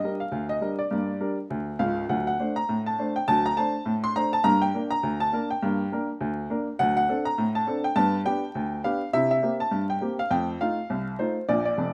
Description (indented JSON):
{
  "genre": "ragtime piano",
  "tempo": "102 BPM",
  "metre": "2/4",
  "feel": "swing 59% on 16ths",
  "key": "unclear",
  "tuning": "A4 = 440 Hz",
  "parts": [
    { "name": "clear upright piano", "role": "solo", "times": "0.0-11.9 s", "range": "Db1 to C6", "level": "-26 LUFS", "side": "equal", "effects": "none" }
  ],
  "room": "light reverb, small room ambience",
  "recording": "rough home demo mix, vinyl crackle",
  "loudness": "-26 LUFS",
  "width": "mono",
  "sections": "0.0-11.9 A section",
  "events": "none",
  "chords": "0.0 Gm; 2.1 D7; 4.4 Gm; 6.8 D7; 8.0 G; 9.1 C7; 10.3 F7",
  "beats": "0.33 | 0.92 1.51 | 2.10 2.68 | 3.27 3.86 | 4.44 5.03 | 5.62 6.20 | 6.79 7.37 | 7.96 8.55 | 9.13 9.72 | 10.31 10.89 | 11.48"
}